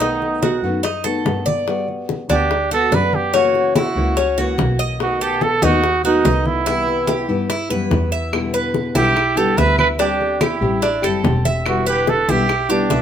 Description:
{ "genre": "latin, Cuban son and guajira", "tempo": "144 BPM", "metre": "4/4", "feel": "straight", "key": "E minor", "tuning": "A4 = 439 Hz", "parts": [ { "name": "breathy trumpet", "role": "melody", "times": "0.0-13.0 s", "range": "D4 to B4", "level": "-19 LUFS", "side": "right 4 dB", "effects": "none" }, { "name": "nylon-string guitar", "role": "accompaniment", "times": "0.0-13.0 s", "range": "B2 to G4", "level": "-23 LUFS", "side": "left 4 dB", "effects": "none" }, { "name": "Cuban tres", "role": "arpeggios", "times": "0.0-13.0 s", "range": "C#4 to E5", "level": "-21 LUFS", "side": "equal", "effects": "none" }, { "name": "muted double bass", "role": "bass", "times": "0.0-13.0 s", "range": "E1 to G2", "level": "-23 LUFS", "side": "equal", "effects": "none" }, { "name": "bongos", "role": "percussion", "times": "0.0-13.0 s", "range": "none", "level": "-26 LUFS", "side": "left 8 dB", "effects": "none" }, { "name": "congas", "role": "percussion", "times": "0.0-13.0 s", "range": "none", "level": "-24 LUFS", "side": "equal", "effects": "none" }, { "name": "claves", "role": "percussion", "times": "8.3-12.7 s", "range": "none", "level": "-28 LUFS", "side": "right 2 dB", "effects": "none" } ], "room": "moderate studio reverb, RT60 0.7 s", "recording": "minimal, uncompressed stereo recording", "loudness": "-15 LUFS", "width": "side -9 dB against mid", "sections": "0.0-13.0 A section", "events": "none", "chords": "0.0 B7; 1.7 Gmaj7; 3.3 F#7; 5.0 B7; 6.7 Cmaj7; 8.3 Em7; 10.0 D7sus4; 11.7 Em7", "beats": "| 0.01 0.43 0.84 1.26 | 1.68 2.09 2.51 2.92 | 3.34 3.76 4.17 4.59 | 5.00 5.42 5.84 6.25 | 6.67 7.08 7.50 7.92 | 8.33 8.75 9.16 9.58 | 9.99 10.41 10.83 11.24 | 11.66 12.07 12.49 12.90" }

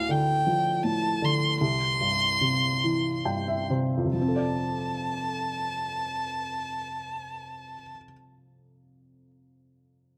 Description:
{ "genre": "pop", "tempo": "42-54 BPM (dotted quarters)", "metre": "6/8", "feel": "straight", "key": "F major", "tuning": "A4 = 440 Hz", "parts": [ { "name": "rich violin", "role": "melody", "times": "0.0-7.9 s", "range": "F5 to C6", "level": "-30 LUFS", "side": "equal", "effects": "none" }, { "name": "warm upright piano", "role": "accompaniment", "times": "0.0-10.2 s", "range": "C2 to G5", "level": "-30 LUFS", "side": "equal", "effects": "none" } ], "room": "light reverb", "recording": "none", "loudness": "-27 LUFS", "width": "mono", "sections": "0.0-4.2 A section; 4.2-9.8 B section", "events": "slowing down 0.0-4.2; upright piano fill 2.8-4.2", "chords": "0.0 Dm; 1.6 C; 4.2 F6", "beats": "0.46 | 1.61 2.83 | 4.17 5.58 | 6.99 8.40" }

